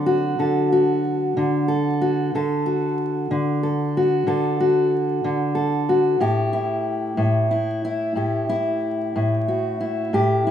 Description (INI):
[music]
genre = blues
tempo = 62 BPM (dotted quarters)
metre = 12/8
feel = straight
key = unclear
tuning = A4 = 440 Hz
[part]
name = fingerpicked steel-string acoustic guitar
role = solo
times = 0.0-10.5 s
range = A2 to A4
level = -19 LUFS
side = equal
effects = none
[sound]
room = light reverb, small room ambience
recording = rough home demo mix, vinyl crackle, studio ambience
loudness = -19 LUFS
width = side -9 dB against mid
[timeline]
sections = 0.0-10.5 A section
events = none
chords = 0.0 D7; 6.2 A5